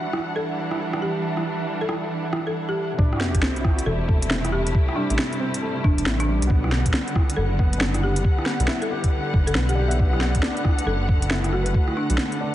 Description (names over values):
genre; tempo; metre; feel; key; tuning
future garage; 137 BPM; 4/4; swing 63% on 16ths; A dorian; A4 = 440 Hz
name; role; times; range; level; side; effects
felt-muted upright piano; accompaniment; 0.0-12.5 s; G3 to E5; -32 LUFS; left 1 dB; sidechain pumping, tape echo
muted studio string section; sustained chords; 0.0-12.5 s; C3 to F#5; -28 LUFS; right 1 dB; sidechain pumping
drifting glass-harmonics texture; texture; 0.0-3.0 s; E4 to E5; -38 LUFS; right 1 dB; chorus, built-in reverb
organic electronic drum kit; drums; 0.1-12.4 s; hi-hat, rim click, snare drum; -26 LUFS; equal; overdrive
folk marimba with medium hard mallets; melody; 0.4-12.2 s; D4 to A4; -30 LUFS; left 1 dB; vintage 12-bit sampler grit, tape echo
electronic kick drum; drums; 3.0-11.9 s; none; -20 LUFS; equal; none
sub drop; sound effects; 3.0-4.7 s; none; -31 LUFS; equal; none
dark detuned saw bass; bass; 3.3-12.2 s; E1 to B1; -23 LUFS; equal; sidechain pumping
room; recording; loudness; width
light reverb, digital ambience; heavily compressed radio sound, multiband compression, nothing above 10.5 kHz; -20 LUFS; side -13 dB against mid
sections
0.0-3.0 A section; 3.0-12.5 B section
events
impact 3.0-4.7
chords
0.0 Em9; 3.0 Am7; 6.5 Gmaj7; 10.0 Bm7